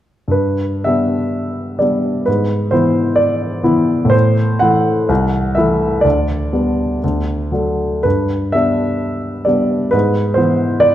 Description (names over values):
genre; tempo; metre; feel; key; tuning
classical, romantic character piece for solo piano; 57-67 BPM; 2/4; rubato; G major; A4 = 440 Hz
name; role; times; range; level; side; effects
warm baby grand piano; solo; 0.3-10.9 s; C2 to F#5; -13 LUFS; equal; none
room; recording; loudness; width
wet recital hall reverb, RT60 1.5 s; dark, warm production; -14 LUFS; side -12 dB against mid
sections
0.3-10.9 A section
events
none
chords
0.3 G; 2.3 E7/G#; 4.1 Am; 5.1 Am/C; 6.0 G/D; 7.0 D; 8.0 G; 9.9 E7/G#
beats
| 0.34 1.34 | 2.27 3.19 | 4.13 5.10 | 6.04 7.02 | 8.04 9.03 | 9.94 10.85